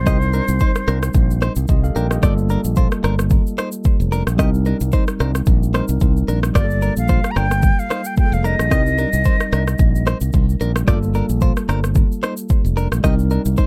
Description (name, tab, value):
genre	afrobeats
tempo	111 BPM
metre	4/4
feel	swing 55% on 16ths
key	C dorian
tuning	A4 = 440 Hz
part	silver concert flute	melody	0.0-1.4, 6.6-10.1 s	C5 to Bb5	-26 LUFS	equal	tape echo
part	mellow tine electric piano	accompaniment	0.0-13.7 s	G3 to G5	-27 LUFS	equal	none
part	modern bright fingered electric bass	bass	0.0-13.6 s	F1 to C2	-21 LUFS	equal	none
part	direct-recorded clean electric guitar	riff	0.1-13.7 s	D4 to Eb5	-28 LUFS	equal	tape echo
part	afro-pop drum kit	drums	0.1-13.7 s	kick drum, rim click, shaker	-20 LUFS	equal	none
room	little or no reverb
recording	dark, warm production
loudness	-18 LUFS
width	mono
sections	0.0-13.7 A section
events	none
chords	0.1 Cm7; 2.2 Gm9; 4.4 Cm7; 6.6 Gm9; 8.7 Cm7; 10.9 Gm9; 13.0 Cm7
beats	| 0.07 0.61 1.15 1.69 | 2.23 2.77 3.31 3.85 | 4.39 4.93 5.47 6.01 | 6.55 7.09 7.63 8.17 | 8.71 9.26 9.80 10.34 | 10.88 11.42 11.96 12.50 | 13.04 13.58